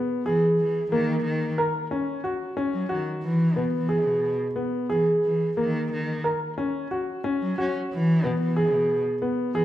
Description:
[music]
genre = contemporary instrumental, contemporary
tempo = 181 BPM (eighths)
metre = 7/8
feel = straight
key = Eb phrygian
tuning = A4 = 440 Hz
[part]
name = clear concert grand piano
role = arpeggios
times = 0.0-9.6 s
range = Bb3 to Bb4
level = -24 LUFS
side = equal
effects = none
[part]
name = warm cello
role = bass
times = 0.3-9.6 s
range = B2 to Db4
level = -26 LUFS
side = equal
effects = none
[sound]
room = wet recital hall reverb, RT60 1.6 s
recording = none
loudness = -22 LUFS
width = side -13 dB against mid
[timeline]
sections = 0.0-9.6 A section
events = none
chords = 0.0 E; 0.9 Ebm7; 3.2 E; 5.6 Ebm7; 7.9 E

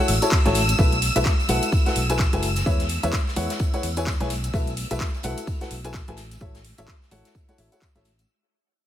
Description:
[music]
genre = piano house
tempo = 128 BPM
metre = 4/4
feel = swing 59% on 16ths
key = unclear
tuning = A4 = 440 Hz
[part]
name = string machine, violins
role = sustained chords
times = 0.0-8.3 s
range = E6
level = -30 LUFS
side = equal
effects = ensemble chorus, sidechain pumping
[part]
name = clear upright piano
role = riff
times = 0.0-8.1 s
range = E4 to A5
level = -27 LUFS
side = left 1 dB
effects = sidechain pumping, ping-pong delay
[part]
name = fingered electric bass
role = bass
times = 0.1-8.2 s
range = F#1 to E2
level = -26 LUFS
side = equal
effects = sidechain pumping
[part]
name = house drum kit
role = drums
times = 0.1-8.3 s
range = handclaps, hi-hat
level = -30 LUFS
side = equal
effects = none
[part]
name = oversized low-tuned drum kit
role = drums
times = 0.1-8.2 s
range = hi-hat, snare drum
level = -36 LUFS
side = left 2 dB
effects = sidechain pumping on hats, high-pass filter on hats, high-pass filter on snare, high-pass filter on room
[part]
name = tambourine and congas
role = percussion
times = 0.2-8.3 s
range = none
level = -33 LUFS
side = equal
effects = none
[part]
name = electronic kick drum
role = drums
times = 0.3-7.9 s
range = none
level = -22 LUFS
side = equal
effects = none
[sound]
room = little or no reverb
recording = none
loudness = -20 LUFS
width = side -11 dB against mid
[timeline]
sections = 0.0-8.3 A section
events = drop 0.0-8.3; fade-out 0.8-8.3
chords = 0.0 A6; 0.8 B7sus4; 2.7 E6; 4.3 B7sus4; 6.2 A6

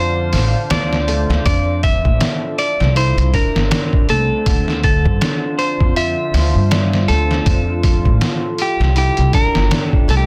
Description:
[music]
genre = trip hop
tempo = 80 BPM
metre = 4/4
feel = swing 58% on 16ths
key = D minor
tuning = A4 = 436 Hz
[part]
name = clean electric guitar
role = melody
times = 0.0-10.2 s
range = G4 to E5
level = -23 LUFS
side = equal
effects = tape echo
[part]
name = deep dark ambient pad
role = sustained chords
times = 0.0-10.3 s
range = C4 to Bb5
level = -29 LUFS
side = equal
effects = chorus, built-in reverb, vintage 12-bit sampler grit
[part]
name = felt-muted upright piano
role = arpeggios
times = 0.0-10.3 s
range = D3 to D5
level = -27 LUFS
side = equal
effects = tape echo
[part]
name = upright bass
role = bass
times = 0.0-10.3 s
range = G1 to A2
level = -20 LUFS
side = equal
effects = none
[part]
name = trip hop sampler-style drum kit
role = drums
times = 0.3-10.3 s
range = hi-hat, kick drum, snare drum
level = -20 LUFS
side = equal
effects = overdrive
[sound]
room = little or no reverb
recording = dense, heavily limited modern master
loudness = -16 LUFS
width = mono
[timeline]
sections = 0.0-10.3 A section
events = none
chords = 0.0 Dm7; 1.5 Fmaj7; 3.0 C7; 4.5 Dm7; 7.5 Fmaj7; 9.0 C7

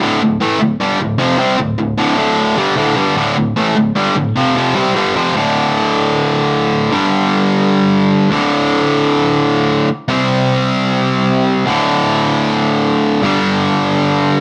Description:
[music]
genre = rock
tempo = 152 BPM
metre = 4/4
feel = straight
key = D minor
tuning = A4 = 436 Hz
[part]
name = overdriven electric guitar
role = solo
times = 0.0-14.4 s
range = D2 to C4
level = -14 LUFS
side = equal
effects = none
[sound]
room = moderate studio reverb, RT60 0.8 s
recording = none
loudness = -14 LUFS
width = mono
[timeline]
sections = 0.0-5.3 A section; 5.3-14.4 B section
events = none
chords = 0.0 Dm; 5.3 D5; 6.9 G5; 8.3 D5; 10.1 C5; 11.7 D5; 13.2 G5

